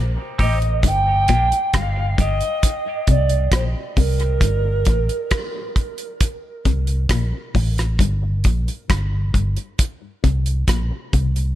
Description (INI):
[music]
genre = dub reggae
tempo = 67 BPM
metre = 4/4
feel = straight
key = unclear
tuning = A4 = 442 Hz
[part]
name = electric guitar with an envelope filter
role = riff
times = 0.0-11.4 s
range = G2 to C3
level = -27 LUFS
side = left 6 dB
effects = tremolo, dub echo
[part]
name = vintage muted fingered electric bass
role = bass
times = 0.0-11.6 s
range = G1 to C2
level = -20 LUFS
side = equal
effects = none
[part]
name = alto ocarina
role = melody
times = 0.4-5.7 s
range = Bb4 to G5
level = -23 LUFS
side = right 2 dB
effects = dub echo
[part]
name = semi-hollow electric guitar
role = accompaniment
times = 0.4-2.4 s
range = Bb3 to G4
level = -32 LUFS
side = right 3 dB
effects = tremolo, high-pass filter, dub echo
[part]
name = damped 70s drum kit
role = drums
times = 0.4-11.6 s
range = hi-hat, kick drum, rim click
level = -19 LUFS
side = equal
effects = none
[sound]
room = small room ambience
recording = lossy compression artefacts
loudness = -17 LUFS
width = side -13 dB against mid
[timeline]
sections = 0.0-11.6 A section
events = none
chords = 0.0 Cm; 0.8 Gm; 2.6 Bbadd9; 4.4 Gm; 6.2 Am; 8.0 Gm; 9.8 Bbsus2